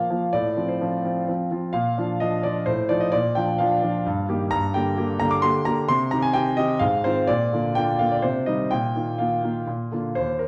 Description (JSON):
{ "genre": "classical-period piano sonatina", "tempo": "129 BPM", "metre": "3/4", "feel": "straight", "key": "Bb major", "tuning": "A4 = 440 Hz", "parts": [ { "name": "clear concert grand piano", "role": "solo", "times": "0.0-10.5 s", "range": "Eb2 to D6", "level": "-23 LUFS", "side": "equal", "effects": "none" } ], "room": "wet recital hall reverb, RT60 1.5 s", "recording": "worn, warbling old tape, cassette tape, warbly pitch drift", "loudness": "-23 LUFS", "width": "mono", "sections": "0.0-10.2 A section", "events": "none", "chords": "0.3 F/A; 1.8 Bb; 2.7 F7/A; 3.1 Bb; 4.1 Eb/G; 4.5 Gm; 5.9 Cm; 6.8 Fm7/Ab; 7.3 Bb; 8.2 Cm; 8.7 Bbsus4; 9.7 Bb" }